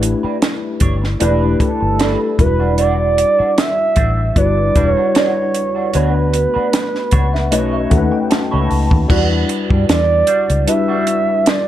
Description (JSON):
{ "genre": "lush 1970s-style soul", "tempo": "76 BPM", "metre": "4/4", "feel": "swing 54% on 16ths", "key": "E dorian", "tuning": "A4 = 440 Hz", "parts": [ { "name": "tine electric piano", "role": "accompaniment", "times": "0.0-11.7 s", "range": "G3 to B5", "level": "-19 LUFS", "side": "left 4 dB", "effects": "ensemble chorus" }, { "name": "electric guitar through a small old amp", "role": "riff", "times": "0.0-11.5 s", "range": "G3 to C#5", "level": "-24 LUFS", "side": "right 7 dB", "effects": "wah, spring reverb" }, { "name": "vintage muted fingered electric bass", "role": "bass", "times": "0.0-10.7 s", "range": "E1 to G2", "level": "-17 LUFS", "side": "equal", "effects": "none" }, { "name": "compact cocktail drum kit", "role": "drums", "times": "0.0-11.7 s", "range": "crash cymbal, hi-hat, kick drum, snare drum", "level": "-17 LUFS", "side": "right 1 dB", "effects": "none" }, { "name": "expressive portamento lead", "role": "melody", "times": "1.6-11.7 s", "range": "A4 to E5", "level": "-17 LUFS", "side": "right 3 dB", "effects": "chorus" } ], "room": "small room reverb", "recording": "none", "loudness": "-13 LUFS", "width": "side -12 dB against mid", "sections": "0.0-9.1 A section; 9.1-11.7 B section", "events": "tine electric piano fill 6.7-9.1", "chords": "0.0 A9sus4; 2.4 Em9; 5.9 D6; 7.5 B9; 9.1 Em9", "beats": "0.41 1.20 1.99 | 2.78 3.57 4.36 5.15 | 5.94 6.73 7.52 8.31 | 9.10 9.89 10.68 11.47" }